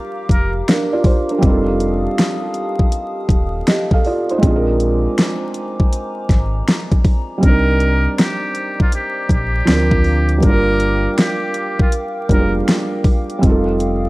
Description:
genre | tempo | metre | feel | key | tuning
lo-fi hip hop | 80 BPM | 4/4 | swing 66% on 16ths | unclear | A4 = 440 Hz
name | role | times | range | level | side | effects
felt-muted upright piano | accompaniment | 0.0-14.1 s | F3 to F5 | -19 LUFS | right 2 dB | cassette tape, low-pass filter
warbly tape-like pad | sustained chords | 0.0-14.1 s | G4 to Eb6 | -27 LUFS | equal | chorus, built-in reverb, low-pass filter
trumpet with metal mute | melody | 0.3-0.5, 7.4-12.5 s | F4 to Bb4 | -23 LUFS | equal | low-pass filter
sub bass with octave | bass | 0.3-14.1 s | Eb1 to D2 | -19 LUFS | equal | none
dubstep drum kit | drums | 0.3-14.0 s | hi-hat, kick drum, snare drum | -15 LUFS | equal | overdrive, vintage 12-bit sampler grit
room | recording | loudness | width
light reverb, digital ambience | vinyl crackle | -14 LUFS | side -20 dB against mid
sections
0.0-14.1 A section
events
none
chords
0.0 Gm7; 1.4 F9; 4.4 Bb9; 7.4 Cm9; 9.7 Bb69/D; 10.4 Gm7; 13.4 F9

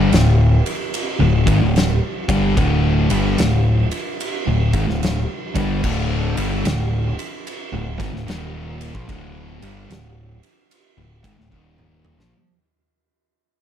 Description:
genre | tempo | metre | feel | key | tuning
stoner and doom metal | 74 BPM | 4/4 | swing 65% on 8ths | unclear | A4 = 441 Hz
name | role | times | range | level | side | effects
distorted electric guitar | riff | 0.0-12.3 s | D2 to G3 | -28 LUFS | equal | distortion
thick fuzz guitar | riff | 0.0-12.3 s | D2 to G3 | -21 LUFS | left 6 dB | distortion
thick fuzz guitar | riff | 0.0-12.3 s | D2 to G3 | -22 LUFS | right 5 dB | distortion
growling picked electric bass | bass | 0.0-12.3 s | D1 to Bb1 | -22 LUFS | equal | overdrive
oversized low-tuned drum kit | drums | 0.1-12.3 s | crash cymbal, kick drum, ride cymbal, snare drum, toms | -24 LUFS | equal | none
room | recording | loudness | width
small room ambience | none | -16 LUFS | side -10 dB against mid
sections
0.0-12.3 A section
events
fade-out 0.0-12.3; drum fill 11.5-12.3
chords
0.0 D5

